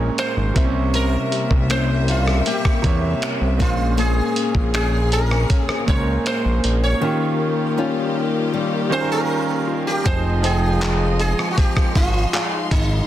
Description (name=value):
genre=contemporary R&B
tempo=79 BPM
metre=4/4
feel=straight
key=unclear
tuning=A4 = 439 Hz
part: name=sitar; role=melody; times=0.0-13.1 s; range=Eb4 to Db5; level=-25 LUFS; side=equal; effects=digital delay
part: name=clear baby grand piano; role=accompaniment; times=0.0-13.1 s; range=Bb2 to G5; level=-25 LUFS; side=right 5 dB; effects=none
part: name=warm studio string section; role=sustained chords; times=0.0-13.1 s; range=C3 to C6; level=-26 LUFS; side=left 2 dB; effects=none
part: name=nylon-string guitar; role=arpeggios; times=0.0-13.1 s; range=C3 to Ab4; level=-27 LUFS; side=left 6 dB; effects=none
part: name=fat analog bass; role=bass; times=0.0-13.0 s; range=F1 to E2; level=-20 LUFS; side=equal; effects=none
part: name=mallet-like synth pluck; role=texture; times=0.0-12.8 s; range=Eb4 to C5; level=-35 LUFS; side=left 3 dB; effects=none
part: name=dusty soul sampler-style drum kit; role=drums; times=0.2-12.9 s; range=finger snaps, handclaps, hi-hat, kick drum, rim click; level=-21 LUFS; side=equal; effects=soft clipping on snare
room=light reverb, small room reverb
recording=dense, heavily limited modern master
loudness=-17 LUFS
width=side -12 dB against mid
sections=0.0-10.1 A section; 10.1-13.1 B section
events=none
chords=0.0 Bbm9; 0.6 C7b9; 3.6 Bbm9; 7.0 Eb9; 10.1 Fm7